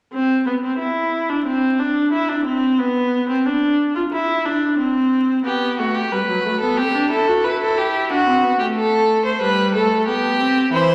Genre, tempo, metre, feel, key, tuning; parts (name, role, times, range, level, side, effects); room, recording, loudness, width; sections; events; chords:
classical, baroque-style fugue for string quartet; 91 BPM; 4/4; straight; A4 = 440 Hz
dark viola; accompaniment; 0.1-10.9 s; E3 to F#4; -21 LUFS; equal
rich violin; second line; 5.4-10.9 s; E4 to C5; -20 LUFS; equal
warm violin; melody; 10.7-10.9 s; C5; -18 LUFS; equal
wet recital hall reverb, RT60 1.7 s; vinyl crackle; -19 LUFS; mono
0.1-10.9 A section
0.1 N.C.; 5.4 G; 6.8 A7(no3); 8.1 D7; 9.4 G